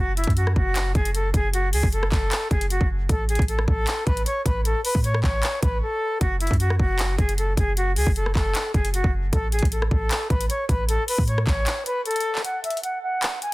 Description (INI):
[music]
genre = hip hop, trap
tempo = 154 BPM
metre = 4/4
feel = half-time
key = unclear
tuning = A4 = 439 Hz
[part]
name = bright reedy silver concert flute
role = melody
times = 0.0-13.5 s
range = E4 to G#5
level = -26 LUFS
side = equal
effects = low-pass filter
[part]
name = clean 808-style bass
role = bass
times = 0.0-11.7 s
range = F#1 to A2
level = -24 LUFS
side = equal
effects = none
[part]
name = trap drum kit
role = drums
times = 0.2-13.5 s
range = handclaps, hi-hat, kick drum, rim click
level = -24 LUFS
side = equal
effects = none
[sound]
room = digital ambience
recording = dense, heavily limited modern master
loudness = -20 LUFS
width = side -20 dB against mid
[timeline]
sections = 0.0-12.4 A section; 12.4-13.5 B section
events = break 5.8-6.2, 11.7-12.4, 12.4-13.5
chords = 0.0 F#m; 3.1 Aadd9; 6.2 F#m; 9.3 Aadd9; 12.4 N.C.